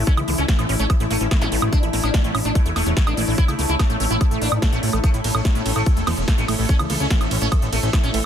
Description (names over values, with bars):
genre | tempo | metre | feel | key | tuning
psychedelic trance | 145 BPM | 4/4 | straight | A major | A4 = 440 Hz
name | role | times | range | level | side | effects
pulsing gated texture | sustained chords | 0.0-8.3 s | A3 to A4 | -29 LUFS | left 2 dB | chorus, built-in reverb, sidechain pumping
liquid acid bass | riff | 0.0-8.2 s | G#3 to E4 | -30 LUFS | right 2 dB | chorus, auto-pan, sidechain pumping, digital delay
fat analog bass | bass | 0.0-8.2 s | E1 to A2 | -23 LUFS | equal | tube saturation
ethereal airy pad | texture | 0.0-8.3 s | A3 to E5 | -30 LUFS | left 1 dB | ensemble chorus, built-in reverb, sidechain pumping
sitar | melody | 0.1-8.2 s | A2 to E4 | -27 LUFS | equal | phaser, vintage 12-bit sampler grit, sidechain pumping, digital delay
big-room dance drum kit | drums | 0.1-8.2 s | hi-hat, ride cymbal, snare drum, woodblock | -26 LUFS | right 2 dB | none
electronic kick drum | drums | 0.1-8.0 s | none | -18 LUFS | equal | overdrive
zap | sound effects | 1.4-1.5 s | none | -31 LUFS | left 1 dB | none
room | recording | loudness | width
little or no reverb | dense, heavily limited modern master | -17 LUFS | side -9 dB against mid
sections
0.0-8.3 A section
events
none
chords
0.0 A5